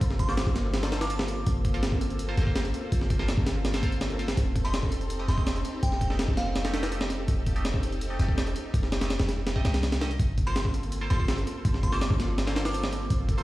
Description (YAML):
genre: drum and bass, jungle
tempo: 165 BPM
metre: 4/4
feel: straight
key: G minor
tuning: A4 = 444 Hz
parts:
  - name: soft string machine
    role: sustained chords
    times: 0.0-13.4 s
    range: Bb3 to A4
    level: -36 LUFS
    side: equal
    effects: ensemble chorus
  - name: warm 808-style bass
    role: bass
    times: 0.0-13.4 s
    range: F1 to C2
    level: -29 LUFS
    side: equal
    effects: none
  - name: breakbeat sampler-style drum kit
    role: drums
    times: 0.0-13.4 s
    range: hi-hat, kick drum, snare drum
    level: -28 LUFS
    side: equal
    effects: none
  - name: glassy synth bell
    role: melody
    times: 0.2-1.4, 4.6-6.6, 10.5-13.0 s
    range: F5 to D6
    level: -37 LUFS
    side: equal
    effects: chorus, vintage 12-bit sampler grit, dub echo
  - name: band-passed chord stab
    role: stabs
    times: 0.3-13.4 s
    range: A3 to Eb5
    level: -39 LUFS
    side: right 1 dB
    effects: phaser, dub echo
room: light reverb, digital ambience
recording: played on a big sound system in a bare room, stone room reverb, vinyl crackle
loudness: -25 LUFS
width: side -17 dB against mid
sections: 0.0-13.4 A section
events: none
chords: 0.0 Gm11; 4.4 F9; 10.2 Gm11